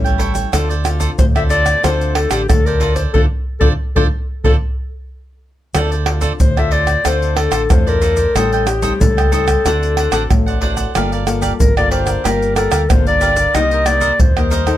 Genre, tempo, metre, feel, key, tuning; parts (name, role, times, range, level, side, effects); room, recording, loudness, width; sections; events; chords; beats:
samba and choro; 92 BPM; 4/4; straight; D minor; A4 = 441 Hz
mellow clarinet; melody; 0.0-14.8 s; G4 to E5; -17 LUFS; left 3 dB; plate reverb
cavaquinho; accompaniment; 0.0-14.8 s; D4 to G5; -23 LUFS; right 6 dB
nylon-string guitar; accompaniment; 0.0-14.8 s; G2 to A4; -23 LUFS; left 6 dB
fingered electric bass with an envelope filter; bass; 0.0-14.8 s; G1 to E2; -19 LUFS; right 1 dB
tube shaker, surdo, pandeiro and tamborim; percussion; 0.1-14.8 s; -16 LUFS; right 1 dB
light reverb; close, detailed microphones; -13 LUFS; side -13 dB against mid
0.0-5.7 A section; 5.7-14.8 A section
band accent 3.1-5.7
0.0 A7; 0.5 Dm7; 8.4 Am7b5; 9.7 D7; 11.0 Gm9; 13.6 Cm7
| 0.53 1.19 1.84 2.49 | 3.14 3.79 4.45 5.10 | 5.75 6.40 7.05 7.70 | 8.35 9.00 9.65 10.30 | 10.95 11.60 12.25 12.90 | 13.55 14.20